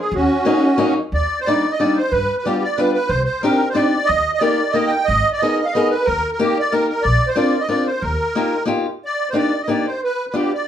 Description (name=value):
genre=musette waltz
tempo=182 BPM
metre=3/4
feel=swing 54% on 8ths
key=Eb major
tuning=A4 = 440 Hz
part: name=musette accordion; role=melody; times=0.0-10.7 s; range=Db4 to G5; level=-18 LUFS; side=right 2 dB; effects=none
part: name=upright bass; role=bass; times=0.1-8.1 s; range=Ab1 to G2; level=-22 LUFS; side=equal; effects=none
part: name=fingerpicked swing-style acoustic guitar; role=accompaniment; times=0.5-10.5 s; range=Gb3 to Bb4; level=-18 LUFS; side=left 2 dB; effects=none
room=wet studio reverb, RT60 0.5 s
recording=band playing live in one room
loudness=-16 LUFS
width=side -10 dB against mid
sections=0.0-1.1 A section; 1.1-9.0 B section; 9.0-10.7 B section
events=none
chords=0.1 Ebm7; 1.1 Ebmaj7; 2.1 G7; 3.1 Cmadd9; 4.1 Eb; 5.1 Abmadd9; 6.1 Eb; 7.0 Bbadd9; 8.0 Ebadd9; 9.0 Ebmaj7; 10.0 G7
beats=| 0.13 0.46 0.80 | 1.13 1.47 1.80 | 2.12 2.45 2.78 | 3.11 3.44 3.77 | 4.09 4.42 4.75 | 5.08 5.41 5.74 | 6.07 6.39 6.72 | 7.04 7.37 7.70 | 8.02 8.35 8.68 | 9.01 9.34 9.67 | 10.00 10.33 10.65